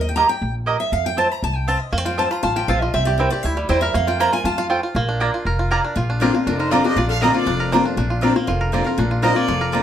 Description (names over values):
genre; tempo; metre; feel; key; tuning
bluegrass; 238 BPM; 4/4; straight; Bb major; A4 = 440 Hz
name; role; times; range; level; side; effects
picked steel-string acoustic guitar; accompaniment; 0.0-9.8 s; F2 to Bb5; -21 LUFS; left 2 dB; none
upright bass; bass; 0.0-9.8 s; F1 to F2; -23 LUFS; equal; none
mandolin; stabs; 0.2-9.8 s; A3 to Bb5; -20 LUFS; right 3 dB; none
bluegrass banjo; melody; 1.9-9.8 s; F3 to Bb4; -24 LUFS; right 2 dB; plate reverb
clear fiddle; melody; 6.5-9.7 s; Bb4 to F5; -24 LUFS; equal; none
lap resonator guitar; second line; 6.5-9.7 s; D4 to Bb4; -26 LUFS; left 3 dB; none
room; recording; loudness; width
moderate small room reverb, RT60 0.6 s; none; -17 LUFS; side -10 dB against mid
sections
0.0-6.0 A section; 6.0-9.8 B section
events
steel-string acoustic guitar solo 0.0-6.0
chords
0.0 Eb; 0.9 F; 2.9 C; 4.0 Fsus4; 4.5 Fadd9; 5.0 Bb; 6.0 Bbadd9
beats
0.17 0.42 0.67 | 0.93 1.18 1.43 1.68 | 1.93 2.19 2.44 2.69 | 2.94 3.19 3.45 3.70 | 3.95 4.20 4.45 4.71 | 4.96 5.21 5.46 5.71 | 5.96 6.21 6.47 6.72 | 6.97 7.22 7.47 7.73 | 7.98 8.23 8.48 8.73 | 8.98 9.24 9.49 9.74